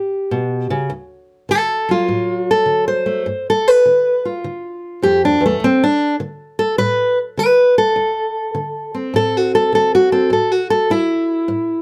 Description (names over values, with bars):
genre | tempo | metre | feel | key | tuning
acoustic country blues, solo or duo | 102 BPM | 4/4 | swing 66% on 8ths | unclear | A4 = 440 Hz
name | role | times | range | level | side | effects
fingerpicked steel-string acoustic guitar | solo | 0.0-11.8 s | D2 to C5 | -16 LUFS | equal | none
room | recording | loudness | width
light reverb | none | -16 LUFS | mono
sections
0.9-11.8 A section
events
steel-string acoustic guitar solo 0.0-11.8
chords
0.0 A7; 0.9 D; 3.3 G7; 5.6 D5; 10.3 A5